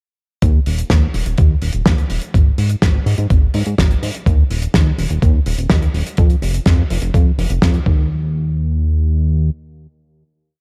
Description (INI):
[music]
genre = italo disco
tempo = 125 BPM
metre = 4/4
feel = straight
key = unclear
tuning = A4 = 440 Hz
[part]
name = chorused synth bass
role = bass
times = 0.4-9.5 s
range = Eb1 to Ab2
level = -19 LUFS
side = equal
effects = none
[part]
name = damped 70s drum kit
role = drums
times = 0.4-7.8 s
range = hi-hat, snare drum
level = -23 LUFS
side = equal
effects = studio reverb
[part]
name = electronic kick drum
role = drums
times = 0.4-8.0 s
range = none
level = -16 LUFS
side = equal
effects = studio reverb
[sound]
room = little or no reverb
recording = dark, warm production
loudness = -16 LUFS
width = mono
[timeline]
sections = 0.4-8.1 verse; 8.1-10.6 final hit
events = none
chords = none